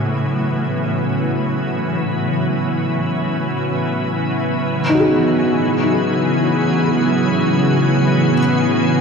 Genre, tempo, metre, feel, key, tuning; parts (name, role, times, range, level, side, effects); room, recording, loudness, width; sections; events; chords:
ambient; free time; A lydian; A4 = 438 Hz
soft additive organ-like pad; sustained chords; 0.0-9.0 s; C#3 to G#5; -16 LUFS; equal; ensemble chorus, built-in reverb, shimmer reverb
clear studio cello section; bass; 0.0-9.0 s; A2; -27 LUFS; equal
felt-muted upright piano; arpeggios; 4.9-9.0 s; D#4 to G#4; -20 LUFS; left 2 dB; ping-pong delay, shimmer reverb
wet lush hall reverb, RT60 2.8 s; dreamy mix soaked in reverb; -15 LUFS; side -5 dB against mid
0.0-9.0 A section
fade-in on ambient pad 0.0-9.0
0.0 Amaj7; 4.6 C#m7/A